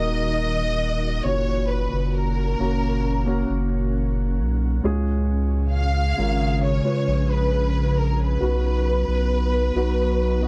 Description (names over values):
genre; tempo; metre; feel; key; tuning
pop; 67 BPM; 4/4; straight; unclear; A4 = 440 Hz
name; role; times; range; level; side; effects
warm studio violin section; melody; 0.0-10.5 s; Bb4 to F5; -28 LUFS; equal; slapback echo
warm concert grand piano; accompaniment; 0.0-10.5 s; Ab2 to Db5; -30 LUFS; equal; none
ethereal airy pad; sustained chords; 0.0-10.5 s; Bb2 to Bb4; -31 LUFS; equal; ensemble chorus, built-in reverb
saturated sub bass; bass; 0.0-10.5 s; Eb1 to Db2; -25 LUFS; equal; none
room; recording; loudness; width
little or no reverb; dry, close 1970s-style studio recording; -22 LUFS; mono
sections
0.0-10.5 A section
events
none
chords
0.0 Ebm; 1.2 Gb; 4.8 Db; 8.4 B